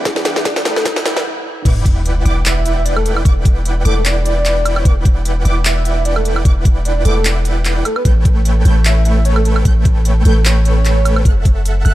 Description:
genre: future bass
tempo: 150 BPM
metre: 4/4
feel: swing 55% on 16ths, half-time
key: E dorian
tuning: A4 = 440 Hz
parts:
  - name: overdriven tine electric piano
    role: accompaniment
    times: 0.0-1.5 s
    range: G3 to E4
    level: -41 LUFS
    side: right 1 dB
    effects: none
  - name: airy breathy pad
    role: sustained chords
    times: 0.0-1.2 s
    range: E3 to D4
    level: -42 LUFS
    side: right 2 dB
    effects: none
  - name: dense compressed supersaw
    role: riff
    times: 0.0-11.9 s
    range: A3 to G5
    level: -22 LUFS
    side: right 1 dB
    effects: sidechain pumping
  - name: long sustained 808-style bass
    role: bass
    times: 0.0-11.9 s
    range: E1 to A1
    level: -14 LUFS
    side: equal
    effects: sidechain pumping
  - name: riser and sub drop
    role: sound effects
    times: 0.0-3.3 s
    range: none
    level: -24 LUFS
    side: equal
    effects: none
  - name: electronic kick drum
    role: drums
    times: 0.1-11.5 s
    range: none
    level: -12 LUFS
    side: equal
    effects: none
  - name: trap drum kit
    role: drums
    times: 0.1-11.9 s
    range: crash cymbal, handclaps, hi-hat, snare drum, woodblock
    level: -19 LUFS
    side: equal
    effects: none
  - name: breathy flute-like synth lead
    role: melody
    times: 0.5-11.3 s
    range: A4 to E5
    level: -22 LUFS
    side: right 1 dB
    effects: wide subtle chorus, sidechain pumping, digital delay
  - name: wide unison pluck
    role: arpeggios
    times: 1.7-11.9 s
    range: D6 to G6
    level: -30 LUFS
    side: right 2 dB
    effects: phaser, sidechain pumping, dub echo
room: digital ambience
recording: dark, warm production, high-pass filter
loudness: -12 LUFS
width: side -15 dB against mid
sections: 0.0-1.7 A section; 1.7-11.9 B section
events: build-up 0.0-1.7; drum fill 0.0-1.3; riser 0.0-1.3; stop 1.3-1.7; drop 1.7-11.9; impact 1.7-3.3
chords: 0.0 Em9; 1.5 N.C.; 1.7 Em9; 7.9 A7; 11.3 F#m7

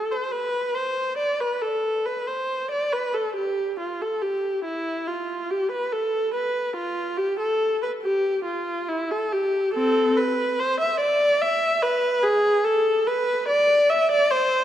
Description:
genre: classical, baroque-style suite movement for unaccompanied viola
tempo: 71 BPM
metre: 3/4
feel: rubato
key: A minor from 9.7 s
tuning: A4 = 439 Hz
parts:
  - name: rich viola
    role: solo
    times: 0.0-14.6 s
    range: C4 to E5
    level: -21 LUFS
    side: equal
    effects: none
room: moderate concert hall reverb, RT60 2.4 s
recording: none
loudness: -21 LUFS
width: side -11 dB against mid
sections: 0.0-14.6 A section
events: none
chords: none

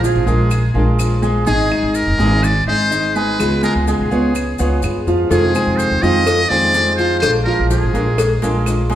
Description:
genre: latin, Cuban son and guajira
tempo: 125 BPM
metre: 4/4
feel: straight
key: unclear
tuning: A4 = 442 Hz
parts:
  - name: trumpet with metal mute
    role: melody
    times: 0.0-8.6 s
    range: Ab4 to Eb5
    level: -19 LUFS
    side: left 1 dB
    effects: none
  - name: fingerpicked steel-string acoustic guitar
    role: accompaniment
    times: 0.0-9.0 s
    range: C3 to Ab4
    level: -20 LUFS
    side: left 1 dB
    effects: none
  - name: warm concert grand piano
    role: arpeggios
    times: 0.0-9.0 s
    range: F3 to Ab5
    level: -20 LUFS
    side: right 2 dB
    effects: none
  - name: upright bass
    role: bass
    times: 0.0-9.0 s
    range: F1 to G2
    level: -18 LUFS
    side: equal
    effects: none
  - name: maracas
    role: percussion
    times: 0.0-9.0 s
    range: none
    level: -34 LUFS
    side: left 4 dB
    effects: none
  - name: claves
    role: percussion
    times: 0.5-8.9 s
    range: none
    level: -33 LUFS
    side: right 2 dB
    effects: none
  - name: cowbell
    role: percussion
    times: 5.3-9.0 s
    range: none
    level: -22 LUFS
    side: left 3 dB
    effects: none
room: wet stone room reverb, RT60 1.3 s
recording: band playing live in one room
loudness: -13 LUFS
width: side -12 dB against mid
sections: 0.0-9.0 A section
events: none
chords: 0.0 Bb7; 1.5 Absus2; 3.4 Db7; 5.3 Fm7; 7.2 Bb7

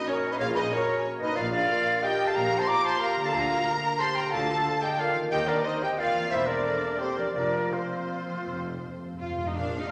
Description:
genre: classical, orchestral ballroom waltz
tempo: 154-199 BPM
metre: 3/4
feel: rubato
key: Bb major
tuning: A4 = 440 Hz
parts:
  - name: warm symphonic violin section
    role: melody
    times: 0.0-9.9 s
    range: C5 to D6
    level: -35 LUFS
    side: equal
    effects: none
  - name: warm symphonic violin section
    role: second line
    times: 0.0-9.9 s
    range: C5 to D6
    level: -36 LUFS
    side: equal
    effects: none
  - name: warm symphonic viola section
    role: accompaniment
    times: 0.0-9.9 s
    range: C4 to D5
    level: -38 LUFS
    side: equal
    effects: none
  - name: warm French horn section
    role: sustained chords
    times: 0.0-9.9 s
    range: Bb3 to C5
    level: -36 LUFS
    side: equal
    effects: none
  - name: concert harp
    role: arpeggios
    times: 0.0-9.9 s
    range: A#2 to C5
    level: -42 LUFS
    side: equal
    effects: none
  - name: bright silver concert flute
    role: second line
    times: 0.1-9.2 s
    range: F4 to Bb5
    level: -32 LUFS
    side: equal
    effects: none
  - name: warm clarinet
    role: second line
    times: 0.1-9.2 s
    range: C5 to D6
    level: -37 LUFS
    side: equal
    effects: none
  - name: mellow tuba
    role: bass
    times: 0.4-9.8 s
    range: E1 to Eb2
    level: -44 LUFS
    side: equal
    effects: none
  - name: rich symphonic cello section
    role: bass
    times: 0.4-9.9 s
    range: E2 to F4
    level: -42 LUFS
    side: equal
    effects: none
  - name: warm symphonic double bass section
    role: bass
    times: 0.4-9.8 s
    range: E1 to Eb2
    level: -43 LUFS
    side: equal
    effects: none
  - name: timpani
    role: percussion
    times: 8.5-9.5 s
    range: F2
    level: -40 LUFS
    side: equal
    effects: none
room: wet scoring stage reverb, RT60 1.8 s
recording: none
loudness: -27 LUFS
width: mono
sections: 0.0-9.6 A section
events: timpani fill 8.5-9.6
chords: 0.0 F#/A#; 1.4 Bb; 3.3 Bb/D; 5.3 Cm7/Eb; 6.3 C7/E; 7.4 Fsus4; 8.5 F

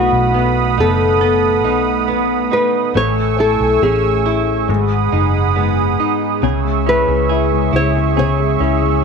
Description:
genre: pop ballad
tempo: 69 BPM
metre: 4/4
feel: straight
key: C# minor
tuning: A4 = 436 Hz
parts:
  - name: nylon-string guitar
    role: melody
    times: 0.0-9.0 s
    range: F#4 to C#5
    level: -17 LUFS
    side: left 1 dB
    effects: none
  - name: warm baby grand piano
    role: accompaniment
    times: 0.0-9.0 s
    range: C#3 to E4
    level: -20 LUFS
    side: left 13 dB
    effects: none
  - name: warm analog pad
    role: sustained chords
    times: 0.0-9.0 s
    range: A3 to E6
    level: -19 LUFS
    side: right 14 dB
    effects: chorus
  - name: direct-recorded clean electric guitar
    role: arpeggios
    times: 0.0-9.0 s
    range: G#2 to A4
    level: -23 LUFS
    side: right 12 dB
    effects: none
  - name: vintage muted fingered electric bass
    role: bass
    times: 0.0-9.0 s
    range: F#1 to C#2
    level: -19 LUFS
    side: equal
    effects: none
room: light reverb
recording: 1960s-style stereo with parts hard left and right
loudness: -13 LUFS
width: side -5 dB against mid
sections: 0.0-6.4 A section; 6.4-9.0 B section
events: none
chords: 0.0 B7; 3.0 Amaj7; 4.7 G#m7; 6.4 C#m

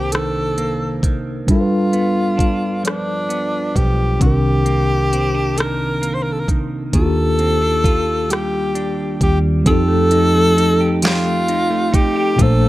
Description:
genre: slow six-eight R&B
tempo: 44 BPM (dotted quarters)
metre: 6/8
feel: straight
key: unclear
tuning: A4 = 440 Hz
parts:
  - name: breathy tenor saxophone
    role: melody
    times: 0.0-12.7 s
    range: D4 to C5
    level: -20 LUFS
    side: equal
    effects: none
  - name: clean electric guitar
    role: second line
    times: 0.0-12.7 s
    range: G2 to G4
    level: -24 LUFS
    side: right 4 dB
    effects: none
  - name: mellow tine electric piano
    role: accompaniment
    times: 0.0-12.7 s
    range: Bb2 to C5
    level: -20 LUFS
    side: left 2 dB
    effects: medium stereo tremolo
  - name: vintage muted fingered electric bass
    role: bass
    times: 0.0-12.7 s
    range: Bb1 to F2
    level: -20 LUFS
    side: equal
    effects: none
  - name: smooth R&B drum kit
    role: drums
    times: 0.1-12.6 s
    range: hi-hat, kick drum, rim click, snare drum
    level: -18 LUFS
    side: equal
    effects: none
room: little or no reverb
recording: none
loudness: -14 LUFS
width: side -16 dB against mid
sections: 0.0-9.7 A section; 9.7-12.7 B section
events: none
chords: 0.0 Cm9; 1.5 G7; 4.2 Cm9; 6.9 Ebmaj9; 9.7 F9

